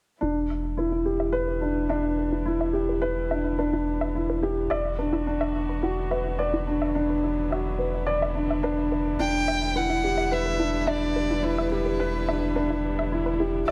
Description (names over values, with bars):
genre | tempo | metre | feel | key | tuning
piano and strings electronica | 107 BPM | 4/4 | straight | E minor | A4 = 445 Hz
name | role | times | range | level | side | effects
muted string quartet | sustained chords | 0.2-13.7 s | D3 to F#4 | -40 LUFS | equal | none
unison pluck | arpeggios | 0.2-13.7 s | E4 to E5 | -35 LUFS | equal | tape echo
dark concert grand piano | riff | 0.2-13.7 s | D4 to D5 | -28 LUFS | equal | none
warm sub bass | bass | 0.2-13.7 s | E1 | -33 LUFS | equal | none
dark violin | melody | 9.2-13.7 s | B4 to G5 | -31 LUFS | equal | none
room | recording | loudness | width
wet echo chamber reverb, RT60 1.4 s, small room ambience | none | -26 LUFS | mono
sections
0.2-13.7 A section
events
fade-in on string quartet 0.2-13.7; filter sweep on synth arpeggio sound 0.2-13.7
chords
0.2 Em7; 4.7 Bm/E; 9.2 Em7